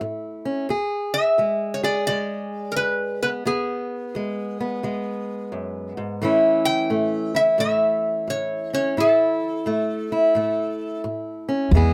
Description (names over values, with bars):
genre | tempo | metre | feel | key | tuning
acoustic country blues, solo or duo | 87 BPM | 4/4 | swing 65% on 8ths | unclear | A4 = 436 Hz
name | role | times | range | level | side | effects
fingerpicked old ladder-braced acoustic guitar | accompaniment | 0.0-11.9 s | E2 to G#4 | -25 LUFS | equal | none
metal-body resonator slide guitar | melody | 1.1-11.0 s | G#4 to G5 | -26 LUFS | equal | none
upright bass | bass | 11.7-11.9 s | E2 | -17 LUFS | equal | none
room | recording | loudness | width
light reverb | close, detailed microphones | -23 LUFS | mono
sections
0.0-11.9 A section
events
none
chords
0.0 A; 0.7 E; 6.2 A